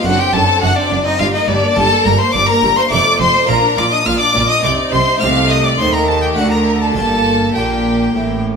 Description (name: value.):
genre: classical, baroque-style concerto movement with solo episodes.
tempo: 104 BPM.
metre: 3/4.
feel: straight.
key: G minor.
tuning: A4 = 439 Hz.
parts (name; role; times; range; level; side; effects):
rich chamber violin section; melody; 0.0-8.4 s; D5 to F6; -19 LUFS; left 4 dB; none.
rich violin; melody; 0.0-8.4 s; D5 to F6; -18 LUFS; left 2 dB; none.
clear chamber violin section; second line; 0.0-8.4 s; D4 to F5; -18 LUFS; left 1 dB; none.
harpsichord; accompaniment; 0.0-8.6 s; F2 to D5; -25 LUFS; equal; none.
rich symphonic viola section; accompaniment; 0.0-8.5 s; G3 to F4; -21 LUFS; equal; none.
rich studio cello section; bass; 0.0-8.6 s; F2 to Eb3; -20 LUFS; right 2 dB; none.
rich symphonic double bass section; bass; 0.1-8.6 s; F1 to Eb2; -20 LUFS; right 3 dB; none.
room: wet recital hall reverb, RT60 1.6 s.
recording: minimal, uncompressed stereo recording.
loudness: -11 LUFS.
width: side -5 dB against mid.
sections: 0.0-8.6 A section.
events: none.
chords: 0.1 D7/F#; 1.2 Gm; 2.9 F; 3.5 Bb; 4.6 Cm; 5.2 Adim/C; 6.4 D5; 7.0 Gm.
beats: | 0.06 0.63 1.20 | 1.77 2.34 2.91 | 3.48 4.06 4.63 | 5.21 5.79 6.38 | 6.96 7.55 8.14.